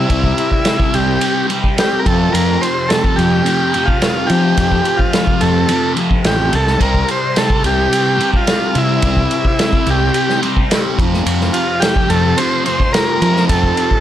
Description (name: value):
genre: psychedelic rock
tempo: 108 BPM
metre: 4/4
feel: straight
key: unclear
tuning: A4 = 441 Hz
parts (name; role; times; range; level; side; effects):
- combo organ; melody; 0.0-14.0 s; E4 to C5; -17 LUFS; equal; slapback echo
- fuzz guitar; riff; 0.0-14.0 s; F2 to C4; -18 LUFS; left 1 dB; distortion, phaser
- fuzz fingered electric bass; bass; 0.0-13.7 s; A1 to F3; -17 LUFS; equal; overdrive
- vintage drum kit; drums; 0.1-14.0 s; kick drum, ride cymbal, snare drum; -18 LUFS; equal; none
room: light reverb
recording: none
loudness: -12 LUFS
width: side -11 dB against mid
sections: 0.0-14.0 A section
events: none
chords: 0.0 C; 2.1 F; 6.8 C; 11.0 F